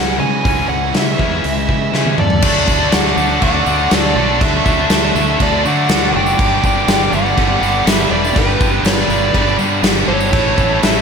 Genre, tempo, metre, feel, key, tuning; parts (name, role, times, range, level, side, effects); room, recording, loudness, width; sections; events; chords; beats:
classic rock; 121 BPM; 4/4; straight; A4 = 438 Hz
dark smooth lead guitar; melody; 0.0-11.0 s; B4 to G#5; -19 LUFS; equal; overdrive, slapback echo
tight distorted guitar; riff; 0.0-11.0 s; G2 to D4; -20 LUFS; left 11 dB; distortion, slapback echo
tight distorted guitar; riff; 0.0-11.0 s; G2 to G4; -20 LUFS; right 11 dB; distortion, slapback echo
fuzz fingered electric bass; bass; 0.0-11.0 s; E1 to D3; -21 LUFS; equal; overdrive
big rock drum kit; drums; 0.5-10.9 s; crash cymbal, hi-hat, kick drum, snare drum, toms; -16 LUFS; equal
octave-fuzz lead guitar; second line; 2.2-11.0 s; G4 to D5; -24 LUFS; right 2 dB; distortion, slapback echo, tape echo
tambourine; percussion; 2.4-10.9 s; -34 LUFS; left 12 dB
moderate lush hall reverb, RT60 2.2 s; big arena sound; -12 LUFS; side -6 dB against mid
0.0-2.4 A section; 2.4-11.0 B section
drum fill 1.9-2.4
0.0 C#m; 2.4 D; 6.4 G; 10.3 A
| 0.45 0.94 1.44 1.93 | 2.43 2.92 3.42 3.91 | 4.41 4.90 5.40 5.89 | 6.38 6.88 7.37 7.87 | 8.36 8.86 9.35 9.84 | 10.34 10.83